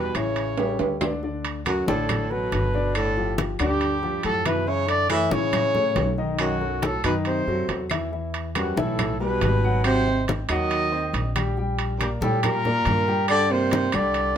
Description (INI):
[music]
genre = Afro-Cuban jazz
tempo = 139 BPM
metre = 4/4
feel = straight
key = D major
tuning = A4 = 440 Hz
[part]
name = mellow trumpet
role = melody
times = 0.0-14.4 s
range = F#4 to E5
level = -25 LUFS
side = equal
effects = none
[part]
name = breathy baritone saxophone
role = second line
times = 0.0-14.4 s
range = F#2 to E3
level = -28 LUFS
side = right 4 dB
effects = none
[part]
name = warm concert grand piano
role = accompaniment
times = 0.0-14.3 s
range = D3 to G5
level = -28 LUFS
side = left 3 dB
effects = none
[part]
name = upright bass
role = bass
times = 0.0-14.4 s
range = G1 to Bb2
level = -28 LUFS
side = equal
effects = none
[part]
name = timbales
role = percussion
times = 0.1-14.4 s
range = none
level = -30 LUFS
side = right 6 dB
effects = none
[part]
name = claves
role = percussion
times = 0.2-14.1 s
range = none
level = -36 LUFS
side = left 8 dB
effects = none
[part]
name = congas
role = percussion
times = 0.2-14.4 s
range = none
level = -30 LUFS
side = left 2 dB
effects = none
[sound]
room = moderate studio reverb, RT60 0.7 s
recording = minimal, uncompressed stereo recording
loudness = -21 LUFS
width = side -9 dB against mid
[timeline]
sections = 0.0-1.2 A section; 1.2-14.4 B section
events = drum fill 0.6-1.2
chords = 0.4 A7; 1.2 D6; 3.0 Gsus2; 4.7 F#m7; 6.4 B7b9; 8.1 Emadd9; 9.8 G#9; 11.6 Bb6; 13.3 Csus2